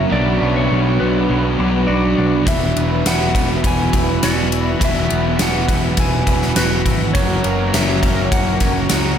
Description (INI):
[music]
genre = rock, shoegaze and dream pop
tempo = 103 BPM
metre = 4/4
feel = straight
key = unclear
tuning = A4 = 442 Hz
[part]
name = clean electric guitar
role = melody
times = 0.0-9.2 s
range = B4 to G#5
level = -24 LUFS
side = left 1 dB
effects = wide subtle chorus, analog delay
[part]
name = chorused pulse-width pad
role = sustained chords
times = 0.0-9.2 s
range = D4 to B5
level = -25 LUFS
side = equal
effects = none
[part]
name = twangy electric guitar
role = arpeggios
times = 0.0-9.2 s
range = E3 to F#4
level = -29 LUFS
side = left 2 dB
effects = wide subtle chorus, analog delay
[part]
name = overdriven electric guitar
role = riff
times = 0.0-9.2 s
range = F#2 to F#4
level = -22 LUFS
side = right 7 dB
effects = reverse reverb
[part]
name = thick fuzz guitar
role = riff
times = 0.0-9.2 s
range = E2 to B3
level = -22 LUFS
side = left 6 dB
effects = distortion, analog chorus
[part]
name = growling picked electric bass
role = bass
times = 0.0-9.2 s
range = E1 to C#2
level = -21 LUFS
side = equal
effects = overdrive
[part]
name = gated 80s drum kit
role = drums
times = 2.5-9.0 s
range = kick drum, ride cymbal, snare drum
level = -19 LUFS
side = equal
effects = none
[sound]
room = wet huge ambient reverb, RT60 6.8 s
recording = dreamy mix soaked in reverb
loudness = -14 LUFS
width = side -8 dB against mid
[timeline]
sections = 0.0-9.2 A section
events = none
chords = 0.1 Bm; 2.5 Esus2; 7.1 F#